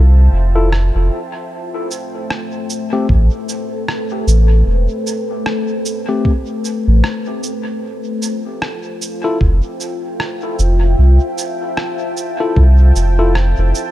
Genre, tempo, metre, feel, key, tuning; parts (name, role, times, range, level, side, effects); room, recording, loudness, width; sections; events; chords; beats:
ambient dub; 76 BPM; 4/4; swing 58% on 16ths; A4 = 440 Hz
deep dark ambient pad; sustained chords; 0.0-13.9 s; A3 to A5; -22 LUFS; left 1 dB; chorus, built-in reverb
warm sub bass; bass; 0.0-13.7 s; E1 to C2; -10 LUFS; equal
tine electric piano; stabs; 0.6-13.3 s; A3 to A4; -22 LUFS; left 3 dB; dub echo
electronic rim click and cabasa; drums; 0.7-13.9 s; -24 LUFS; right 1 dB; dub echo
electronic kick drum; drums; 3.1-12.7 s; -15 LUFS; equal
digital ambience; echo-heavy mix; -14 LUFS; side -14 dB against mid
0.0-13.9 A section
0.0 Fmaj7; 1.5 Am7; 7.8 Fmaj7
0.72 | 1.51 2.30 3.09 3.88 | 4.67 5.46 6.25 7.04 | 7.83 8.62 9.41 10.20 | 10.99 11.78 12.57 13.36